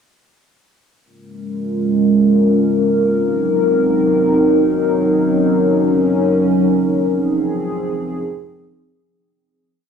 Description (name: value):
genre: hip hop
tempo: free time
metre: none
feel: none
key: Bb minor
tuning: A4 = 439 Hz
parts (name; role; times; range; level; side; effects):
- dark analog pad; solo; 1.4-9.0 s; F3 to Bb4; -14 LUFS; equal; chorus, phaser
room: moderate huge ambient reverb, RT60 6.0 s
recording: none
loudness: -13 LUFS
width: side -7 dB against mid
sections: 1.0-9.0 breakdown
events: fade-out 7.0-9.0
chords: 1.0 Bbm7; 3.0 Cm7b5; 5.0 Ebm7; 7.0 Fm7